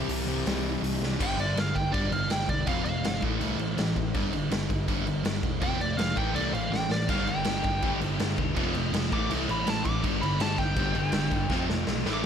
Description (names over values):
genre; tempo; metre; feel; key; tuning
punk rock; 163 BPM; 4/4; straight; unclear; A4 = 441 Hz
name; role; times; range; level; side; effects
biting lead guitar; melody; 0.0-3.2, 5.6-12.2 s; G4 to D6; -32 LUFS; right 1 dB; overdrive, tape echo
overdriven semi-hollow guitar; riff; 0.0-12.3 s; F2 to C4; -32 LUFS; left 11 dB; none
sludgy distorted guitar; riff; 0.0-12.2 s; G2 to E4; -33 LUFS; right 12 dB; overdrive
overdriven picked electric bass; bass; 0.1-12.2 s; E1 to C2; -33 LUFS; equal; none
raw garage drum kit; drums; 0.1-12.3 s; crash cymbal, hi-hat, kick drum, snare drum, splash cymbal; -30 LUFS; equal; none
scooped high-gain guitar; riff; 7.1-12.3 s; F2 to A3; -34 LUFS; left 1 dB; distortion
room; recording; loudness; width
light reverb; none; -25 LUFS; side -8 dB against mid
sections
0.0-1.2 A section; 1.2-12.3 B section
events
half time 0.0-1.2; drum fill 1.0, 6.7-7.1, 11.5-12.3; lead electric guitar solo 1.2-12.3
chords
0.0 C; 1.2 G5; 2.7 F; 3.2 Am; 4.1 G5; 5.6 F; 6.2 Am; 7.1 G5; 8.6 F; 9.1 Am; 10.0 G5; 11.5 F